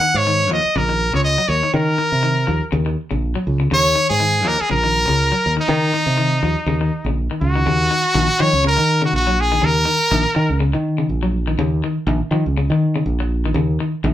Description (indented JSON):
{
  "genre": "afrobeat",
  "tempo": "122 BPM",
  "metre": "4/4",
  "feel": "swing 55% on 16ths",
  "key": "Eb dorian",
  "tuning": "A4 = 440 Hz",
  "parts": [
    { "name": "brilliant trumpet", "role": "melody", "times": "0.0-10.6 s", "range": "Eb4 to Gb5", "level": "-17 LUFS", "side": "equal", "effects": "none" },
    { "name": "electric guitar at the edge of break-up", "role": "arpeggios", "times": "0.0-14.1 s", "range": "Db3 to Gb3", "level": "-24 LUFS", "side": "left 3 dB", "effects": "none" },
    { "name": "fingered electric bass", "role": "bass", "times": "0.1-14.1 s", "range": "Bb1 to Eb3", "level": "-19 LUFS", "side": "equal", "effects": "none" }
  ],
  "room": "moderate studio ambience, RT60 0.5 s",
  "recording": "band playing live in one room",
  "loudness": "-15 LUFS",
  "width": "side -12 dB against mid",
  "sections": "0.0-7.7 A section; 7.7-14.1 B section",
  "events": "none",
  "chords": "0.0 Eb7(no3)"
}